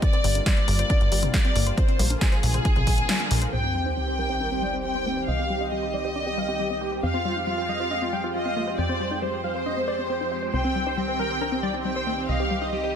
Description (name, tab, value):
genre	uplifting trance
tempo	137 BPM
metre	4/4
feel	straight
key	C minor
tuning	A4 = 440 Hz
part	dark studio violin section	second line	0.0-13.0 s	Ab4 to G5	-28 LUFS	left 2 dB	digital delay
part	lush unison pad	sustained chords	0.0-12.9 s	D3 to G4	-33 LUFS	right 1 dB	chorus, sidechain pumping
part	wide unison pluck	arpeggios	0.0-12.9 s	G3 to C5	-33 LUFS	left 3 dB	sidechain pumping, digital delay
part	electronic kick drum	drums	0.0-3.0 s	none	-22 LUFS	equal	overdrive
part	punchy analog drum machine	drums	0.0-3.5 s	hi-hat, snare drum, toms	-28 LUFS	left 1 dB	overdrive, low-pass filter on hats, low-pass filter on snare, low-pass filter on toms
part	plucky analog bass	bass	0.2-13.0 s	G1 to F2	-30 LUFS	equal	sidechain pumping
part	supersaw chords	melody	3.5-12.9 s	C4 to G5	-29 LUFS	right 2 dB	sidechain pumping, low-pass filter, ping-pong delay
part	sub drop	sound effects	3.5-5.3 s	none	-31 LUFS	equal	none
room	light reverb, digital ambience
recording	none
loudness	-22 LUFS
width	side -8 dB against mid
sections	0.0-3.5 A section; 3.5-13.0 B section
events	kick drops out 3.1-3.5; band accent 3.1; impact 3.5-5.3; filter sweep on supersaw synth 3.5-13.0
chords	0.0 Gm7; 1.8 Bb; 3.5 Cm; 7.0 Fmadd9; 10.5 Cm